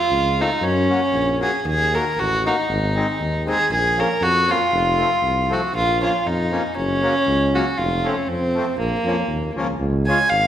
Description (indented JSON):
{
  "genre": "alpine folk",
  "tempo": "118 BPM",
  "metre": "2/4",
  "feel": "swing 54% on 8ths",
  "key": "Bb minor",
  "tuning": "A4 = 440 Hz",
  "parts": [
    { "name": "warm fiddle", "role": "melody", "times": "0.0-10.5 s", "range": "Bb3 to Ab5", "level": "-19 LUFS", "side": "equal", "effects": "none" },
    { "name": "mellow tuba", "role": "bass", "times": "0.1-10.5 s", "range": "F1 to Gb2", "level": "-24 LUFS", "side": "equal", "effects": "none" },
    { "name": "accordion", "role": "accompaniment", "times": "0.4-10.2 s", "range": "F3 to Gb4", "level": "-26 LUFS", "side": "left 2 dB", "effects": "none" }
  ],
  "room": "wet recital hall reverb, RT60 1.6 s",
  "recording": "recorded in a church or concert hall",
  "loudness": "-17 LUFS",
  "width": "side -10 dB against mid",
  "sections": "0.0-9.8 A section",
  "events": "none",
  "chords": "0.0 F; 0.6 Gb; 1.7 Ebm; 2.7 Ab; 3.7 Bbm; 4.7 F; 5.7 Bbm; 6.8 Gb; 7.8 F; 8.8 Bbm; 9.8 Db"
}